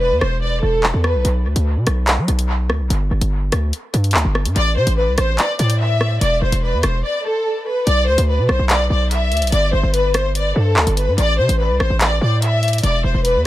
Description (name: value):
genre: hip hop, drill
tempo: 145 BPM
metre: 4/4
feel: half-time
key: B phrygian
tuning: A4 = 441 Hz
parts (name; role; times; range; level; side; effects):
- warm studio violin section; melody; 0.0-1.2, 4.6-13.4 s; A4 to E5; -19 LUFS; left 1 dB; dub echo
- hard-hitting 808-style bass; bass; 0.0-13.5 s; E1 to F#3; -17 LUFS; equal; none
- drill drum kit; drums; 0.2-13.3 s; handclaps, hi-hat, rim click; -22 LUFS; equal; dub echo
room: little or no reverb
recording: echo-heavy mix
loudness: -15 LUFS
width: side -15 dB against mid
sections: 0.0-7.9 A section; 7.9-13.5 B section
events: break 0.0-1.2, 7.0-7.9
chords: 0.0 E5; 1.2 Bm; 2.9 G5; 4.6 Am; 6.2 Cmaj13/E; 7.9 Bm; 9.5 G5; 11.2 Am; 12.8 E5